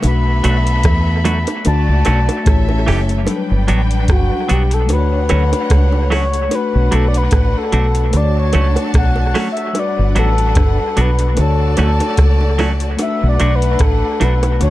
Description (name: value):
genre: lovers rock reggae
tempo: 74 BPM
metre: 4/4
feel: swing 55% on 16ths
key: D major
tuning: A4 = 439 Hz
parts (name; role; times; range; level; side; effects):
- rich studio violin section; second line; 0.0-14.7 s; A3 to A5; -26 LUFS; equal; none
- bell-like tine electric piano; accompaniment; 0.0-14.7 s; F#3 to D5; -23 LUFS; left 4 dB; dub echo
- deep dub fingered electric bass; bass; 0.0-14.7 s; F#1 to E2; -15 LUFS; equal; none
- soft vintage rhythm box; drums; 0.0-14.7 s; hi-hat, kick drum, rim click; -17 LUFS; equal; dub echo
- bongos; percussion; 0.0-14.7 s; none; -26 LUFS; right 4 dB; none
- reedy FM lead; melody; 0.1-14.7 s; F#4 to B5; -21 LUFS; left 2 dB; chorus, tape echo
- semi-hollow electric guitar; stabs; 0.4-14.5 s; E3 to G4; -24 LUFS; right 3 dB; dub echo
room: little or no reverb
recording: dark, warm production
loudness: -12 LUFS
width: side -16 dB against mid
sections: 0.0-3.3 A section; 3.3-14.7 B section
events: soft synth lead solo 3.3-14.7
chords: 0.0 Bm7; 1.7 Dmaj7; 2.5 A7; 3.3 Gmaj7; 4.9 Dmaj7; 6.5 Bm7; 8.1 Dmaj7; 9.8 Gmaj7; 11.4 Dmaj7; 13.0 Bm7